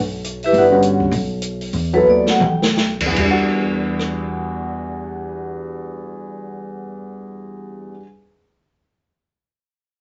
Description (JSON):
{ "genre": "modal jazz", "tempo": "145-208 BPM", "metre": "4/4", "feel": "swing 62% on 8ths", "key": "E minor", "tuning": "A4 = 442 Hz", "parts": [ { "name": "upright bass", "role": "bass", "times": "0.0-7.9 s", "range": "G1 to E2", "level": "-28 LUFS", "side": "equal", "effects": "none" }, { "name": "open jazz drum kit", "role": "drums", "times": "0.2-4.1 s", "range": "crash cymbal, hi-hat, kick drum, rim click, snare drum, toms", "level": "-24 LUFS", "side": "equal", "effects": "none" }, { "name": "vibraphone with medium hard mallets", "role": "melody", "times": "0.4-2.8 s", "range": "E4 to G5", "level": "-17 LUFS", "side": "equal", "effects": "none" }, { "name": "dark grand piano", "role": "accompaniment", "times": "0.7-8.0 s", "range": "E2 to A4", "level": "-24 LUFS", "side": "equal", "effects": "none" } ], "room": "moderate studio reverb, RT60 0.6 s", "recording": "nothing above 7.8 kHz", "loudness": "-18 LUFS", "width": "mono", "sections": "0.0-3.2 A section; 3.2-6.5 B section", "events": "vibraphone solo 0.0-3.2; slowing down 0.5-3.2; drum fill 2.1-2.8", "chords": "0.0 Em9" }